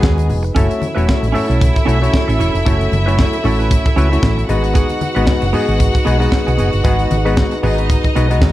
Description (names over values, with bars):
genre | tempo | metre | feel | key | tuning
disco | 114 BPM | 4/4 | swing 56% on 16ths | F# dorian | A4 = 440 Hz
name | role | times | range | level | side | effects
clear studio string section | second line | 0.0-8.5 s | D#4 to G#5 | -22 LUFS | right 1 dB | none
auto-wah clav | accompaniment | 0.0-8.5 s | G#3 to C#5 | -20 LUFS | left 3 dB | none
semi-hollow electric guitar | accompaniment | 0.0-8.4 s | B3 to B4 | -24 LUFS | right 6 dB | none
dark French horn section | sustained chords | 0.0-8.5 s | F#3 to B4 | -24 LUFS | left 1 dB | none
hollow-body short-scale fingered electric bass | bass | 0.0-8.5 s | E1 to D#2 | -16 LUFS | equal | none
tight funk drum kit | drums | 0.0-8.5 s | hi-hat, kick drum, snare drum | -16 LUFS | equal | none
congas | percussion | 0.0-8.5 s | none | -26 LUFS | left 3 dB | none
room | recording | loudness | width
light reverb, studio ambience | dark, warm production | -12 LUFS | side -15 dB against mid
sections
0.0-8.5 A section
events
none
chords
0.0 G#m7; 0.6 F#m7; 4.5 G#m7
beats
0.03 | 0.56 1.08 1.61 2.13 | 2.66 3.18 3.71 4.23 | 4.75 5.28 5.80 6.33 | 6.85 7.37 7.89 8.42